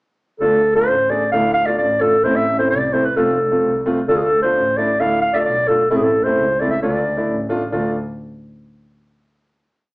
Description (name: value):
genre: klezmer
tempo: 131 BPM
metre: 2/4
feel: straight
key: D minor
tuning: A4 = 441 Hz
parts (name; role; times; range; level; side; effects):
- mellow clarinet; melody; 0.4-7.9 s; G#4 to F5; -16 LUFS; equal; none
- warm upright piano; accompaniment; 0.4-7.9 s; A3 to G#4; -21 LUFS; equal; none
- warm double bass; bass; 0.4-7.9 s; F1 to D2; -26 LUFS; equal; none
room: moderate studio reverb, RT60 0.7 s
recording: band playing live in one room, small speaker sound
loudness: -15 LUFS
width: side -24 dB against mid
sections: 0.4-7.7 A section; 7.7-8.6 final chord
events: none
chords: 0.4 Dm; 2.2 Am; 3.2 F; 4.1 Dm; 5.9 Am; 6.8 Dm